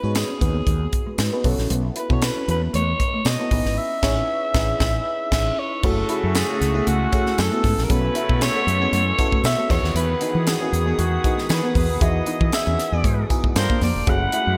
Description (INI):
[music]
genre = polished 1980s jazz-funk pop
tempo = 116 BPM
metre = 4/4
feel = swing 54% on 16ths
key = E major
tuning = A4 = 440 Hz
[part]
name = growling alto saxophone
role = melody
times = 0.0-14.6 s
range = F#4 to F#5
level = -27 LUFS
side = equal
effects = slapback echo
[part]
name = FM electric piano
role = accompaniment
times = 0.0-14.6 s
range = E3 to B5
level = -30 LUFS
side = equal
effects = phaser, analog chorus, slapback echo
[part]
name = mellow fretless electric bass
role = bass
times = 0.0-14.6 s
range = F1 to E3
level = -25 LUFS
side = equal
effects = none
[part]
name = tight funk drum kit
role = drums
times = 0.1-14.5 s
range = crash cymbal, hi-hat, kick drum, snare drum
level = -26 LUFS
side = equal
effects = none
[part]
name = tambourine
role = percussion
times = 0.2-13.7 s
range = none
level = -40 LUFS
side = equal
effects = none
[part]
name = mellow electric guitar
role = riff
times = 0.3-14.4 s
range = G#3 to F#4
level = -33 LUFS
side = equal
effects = subtle chorus, slapback echo
[part]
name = clear horn section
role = second line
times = 5.8-14.6 s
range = C#3 to B4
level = -34 LUFS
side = equal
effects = slapback echo
[part]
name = hollow soft pad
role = sustained chords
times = 5.8-14.6 s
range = A3 to E6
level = -36 LUFS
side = equal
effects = chorus
[sound]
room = moderate lush hall reverb, RT60 2.0 s, small room ambience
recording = big arena sound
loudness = -21 LUFS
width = mono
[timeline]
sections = 0.0-5.8 A section; 5.8-14.6 B section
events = band accent 3.8-5.8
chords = 0.0 G#m7; 1.4 B9sus4; 3.5 Amaj9#11; 5.8 F#m9; 7.9 B9sus4; 9.7 Emaj9; 13.6 Gm9